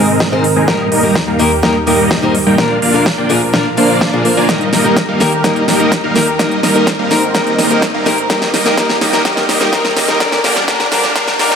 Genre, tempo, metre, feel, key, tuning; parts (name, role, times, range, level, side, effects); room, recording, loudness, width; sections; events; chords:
EDM, festival progressive house; 126 BPM; 4/4; straight; Eb major; A4 = 440 Hz
fingerpicked steel-string acoustic guitar; accompaniment; 0.0-11.6 s; Ab2 to C5; -16 LUFS; left 2 dB; sidechain pumping, tape echo
lush unison pad; sustained chords; 0.0-11.6 s; Eb2 to Bb4; -19 LUFS; right 1 dB; chorus, vintage 12-bit sampler grit, sidechain pumping
dense compressed supersaw; riff; 0.0-11.6 s; G3 to Ab5; -15 LUFS; equal; sidechain pumping, low-pass filter, tape echo
big-room dance drum kit; drums; 0.2-11.6 s; hi-hat, snare drum; -17 LUFS; equal
electronic kick drum; drums; 0.2-11.3 s; -19 LUFS; equal; high-pass filter on kick
riser and swell; sound effects; 7.9-11.6 s; -25 LUFS; equal
moderate lush hall reverb, RT60 2.1 s; high-pass filter; -10 LUFS; side -7 dB against mid
0.0-11.6 A section
build-up 0.0-11.6; drum fill 0.0-11.6; filter sweep on supersaw synth 0.0-11.6; filter sweep 0.0-11.6; swell 11.2-11.6
0.0 Abadd9; 0.7 Eb; 2.6 Bb; 4.5 Eb; 6.4 Abadd9; 8.3 Eb; 10.2 Bb